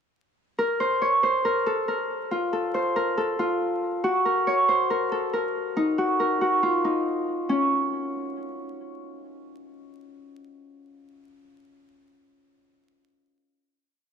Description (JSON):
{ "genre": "hip hop, drill", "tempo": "139 BPM", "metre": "4/4", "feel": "half-time", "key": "Bb harmonic minor", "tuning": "A4 = 441 Hz", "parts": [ { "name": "Celtic harp", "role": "solo", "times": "0.6-10.4 s", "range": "Db4 to Db5", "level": "-23 LUFS", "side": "equal", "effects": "low-pass filter" } ], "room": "moderate plate reverb, RT60 3.4 s", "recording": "vinyl crackle", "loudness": "-22 LUFS", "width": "side -7 dB against mid", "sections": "0.6-7.5 breakdown; 7.5-10.9 final note", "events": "none", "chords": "none", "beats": "| 0.59 1.02 1.45 1.88 | 2.31 2.74 3.17 3.61 | 4.04 4.47 4.90 5.33 | 5.76 6.20 6.63 7.06 | 7.49 7.92 8.36 8.79 | 9.22 9.65 10.08" }